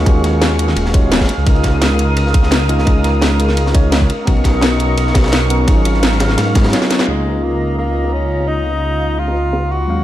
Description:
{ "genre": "liquid drum and bass", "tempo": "171 BPM", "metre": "4/4", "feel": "straight", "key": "Db mixolydian", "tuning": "A4 = 444 Hz", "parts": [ { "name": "tine electric piano", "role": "accompaniment", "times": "0.0-10.0 s", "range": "Gb3 to F5", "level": "-19 LUFS", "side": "equal", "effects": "vintage 12-bit sampler grit, low-pass filter, ping-pong delay" }, { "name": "lush unison pad", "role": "sustained chords", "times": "0.0-10.0 s", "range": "Gb3 to Eb6", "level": "-22 LUFS", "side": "equal", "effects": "chorus, sidechain pumping" }, { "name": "swelling detuned saw bass", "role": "bass", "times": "0.0-10.0 s", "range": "Eb1 to Ab2", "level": "-17 LUFS", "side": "equal", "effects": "none" }, { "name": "crunchy breakbeat drum kit", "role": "drums", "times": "0.1-10.0 s", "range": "ride cymbal, snare drum", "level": "-24 LUFS", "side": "equal", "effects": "high-pass filter on cymbals, low-pass filter on cymbals, studio reverb, high-pass filter on snare, low-pass filter on snare, high-pass filter on room, low-pass filter on room" }, { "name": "electronic kick drum", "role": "drums", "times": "0.1-6.6 s", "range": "none", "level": "-13 LUFS", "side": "equal", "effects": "studio reverb" }, { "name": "garage drum kit", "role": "drums", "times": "0.1-9.8 s", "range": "cabasa, hi-hat, snare drum", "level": "-18 LUFS", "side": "equal", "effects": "low-pass filter on hats, studio reverb, low-pass filter on cymbals, low-pass filter on snare, low-pass filter on perc" }, { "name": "breathy tenor saxophone", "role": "melody", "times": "7.1-10.0 s", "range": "Ab3 to Gb4", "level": "-21 LUFS", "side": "equal", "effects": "digital delay" } ], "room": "light reverb, small room ambience", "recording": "dark, warm production", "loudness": "-12 LUFS", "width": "side -13 dB against mid", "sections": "0.0-7.1 A section; 7.1-10.0 B section", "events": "drum fill 6.7-7.1; band accent 7.0; filter sweep on drum 7.1-10.0; filter sweep on tine electric piano 7.1-10.0", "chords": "0.0 Ebm11; 1.3 Db69; 4.1 Cbmaj9; 5.7 Ab13sus4; 7.1 Db69", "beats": "| 0.06 0.41 0.77 1.12 | 1.47 1.82 2.17 2.52 | 2.87 3.22 3.57 3.92 | 4.27 4.62 4.97 5.33 | 5.68 6.03 6.38 6.73 | 7.08 7.43 7.78 8.13 | 8.48 8.84 9.19 9.54 | 9.89" }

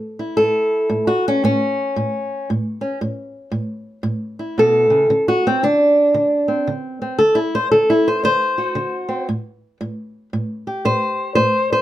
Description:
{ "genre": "acoustic country blues, solo or duo", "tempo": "114 BPM", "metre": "4/4", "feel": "swing 63% on 8ths", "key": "unclear", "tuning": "A4 = 436 Hz", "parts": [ { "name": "fingerpicked old ladder-braced acoustic guitar", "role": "solo", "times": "0.0-11.8 s", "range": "A2 to C5", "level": "-16 LUFS", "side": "equal", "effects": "none" } ], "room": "light reverb", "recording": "none", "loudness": "-16 LUFS", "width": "side -13 dB against mid", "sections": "0.0-11.8 A section", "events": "steel-string acoustic guitar solo 0.0-11.8", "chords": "0.0 A; 5.1 D7; 9.3 A7(no3)", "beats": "0.37 | 0.90 1.43 1.95 2.48 | 3.00 3.53 4.05 4.58 | 5.10 5.63 6.15 6.67 | 7.20 7.72 8.24 8.77 | 9.29 9.81 10.33 10.85 | 11.37" }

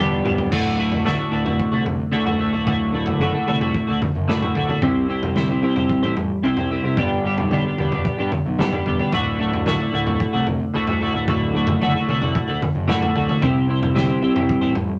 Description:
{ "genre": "psychedelic rock", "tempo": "112 BPM", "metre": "4/4", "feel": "straight", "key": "D mixolydian", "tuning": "A4 = 440 Hz", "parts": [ { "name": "twelve-string electric guitar", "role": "riff", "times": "0.0-15.0 s", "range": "D2 to C5", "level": "-22 LUFS", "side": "equal", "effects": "rotary speaker" }, { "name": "fuzz picked electric bass", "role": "bass", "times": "0.0-14.9 s", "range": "D1 to G2", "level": "-28 LUFS", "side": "equal", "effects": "overdrive" }, { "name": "vintage drum kit", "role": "drums", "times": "0.3-14.9 s", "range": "crash cymbal, kick drum, snare drum, toms", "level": "-28 LUFS", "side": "equal", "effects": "none" } ], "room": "wet studio reverb, RT60 0.6 s", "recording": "none", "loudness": "-20 LUFS", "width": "mono", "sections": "0.5-15.0 A section", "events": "drum fill 0.0-0.5", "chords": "0.0 G; 0.5 D; 4.8 C; 7.0 G; 9.1 D; 13.4 C", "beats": "| 0.52 1.06 1.59 2.13 | 2.67 3.21 3.75 4.29 | 4.83 5.37 5.90 6.44 | 6.98 7.52 8.06 8.59 | 9.13 9.67 10.21 10.74 | 11.28 11.82 12.35 12.89 | 13.42 13.96 14.49" }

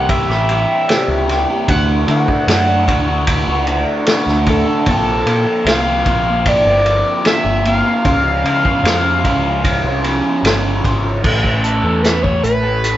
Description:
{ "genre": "psychedelic rock", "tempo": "75 BPM", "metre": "4/4", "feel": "straight", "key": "unclear", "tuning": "A4 = 441 Hz", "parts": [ { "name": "overdriven synth lead", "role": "melody", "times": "0.0-13.0 s", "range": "A4 to F#5", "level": "-18 LUFS", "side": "equal", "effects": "none" }, { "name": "crunchy overdriven guitar", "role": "riff", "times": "0.0-13.0 s", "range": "A2 to A4", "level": "-18 LUFS", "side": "equal", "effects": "phaser" }, { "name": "deep dub picked electric bass", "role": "bass", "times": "0.0-13.0 s", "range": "G1 to D3", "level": "-19 LUFS", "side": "equal", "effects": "none" }, { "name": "vintage drum kit", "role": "drums", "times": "0.1-13.0 s", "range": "crash cymbal, hi-hat, kick drum, ride cymbal, snare drum", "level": "-18 LUFS", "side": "equal", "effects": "none" } ], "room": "moderate stone room reverb, RT60 1.0 s", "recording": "band playing live in one room, nothing above 7.8 kHz", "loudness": "-12 LUFS", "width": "side -13 dB against mid", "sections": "0.0-11.3 A section; 11.3-13.0 B section", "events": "analog synth lead solo 11.3-13.0", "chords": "0.0 C6; 1.7 D; 4.9 Bbsus2; 8.1 C#; 11.3 A", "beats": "0.09 0.88 | 1.68 2.48 3.27 4.07 | 4.87 5.67 6.46 7.26 | 8.06 8.86 9.65 10.45 | 11.25 12.05 12.85" }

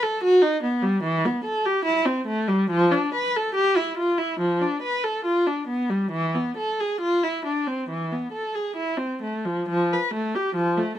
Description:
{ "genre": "classical, baroque-style suite movement for unaccompanied viola", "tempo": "64-74 BPM", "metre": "4/4", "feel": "rubato", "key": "unclear", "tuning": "A4 = 437 Hz", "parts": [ { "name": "warm viola", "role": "solo", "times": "0.0-11.0 s", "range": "E3 to B4", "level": "-21 LUFS", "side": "equal", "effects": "none" } ], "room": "light reverb", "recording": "minimal, uncompressed stereo recording", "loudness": "-21 LUFS", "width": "side -11 dB against mid", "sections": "0.0-9.7 A section; 9.7-11.0 B section", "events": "none", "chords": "none", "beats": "0.22 1.03 1.84 | 2.70 3.56 4.40 5.25 | 6.12 7.01 7.89 8.76 | 9.68 10.56" }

